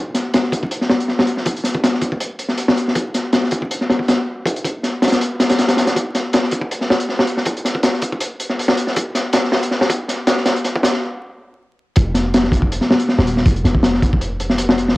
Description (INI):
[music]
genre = drum and bass, jungle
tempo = 160 BPM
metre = 4/4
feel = swing 54% on 16ths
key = unclear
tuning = A4 = 440 Hz
[part]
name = crunchy breakbeat drum kit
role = drums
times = 0.1-15.0 s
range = hi-hat, kick drum, snare drum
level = -16 LUFS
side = equal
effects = high-pass filter on kick, high-pass filter on hats, high-pass filter on snare, high-pass filter on room
[part]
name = warm 808-style bass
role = bass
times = 12.0-14.9 s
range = Eb1 to F1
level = -19 LUFS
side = equal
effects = none
[sound]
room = moderate small room ambience, RT60 0.5 s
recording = home recording on cassette, vinyl crackle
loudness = -15 LUFS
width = side -19 dB against mid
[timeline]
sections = 0.0-12.0 A section; 12.0-15.0 B section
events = build-up 0.0-12.0; stop 11.2-12.0; drop 12.0-15.0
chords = none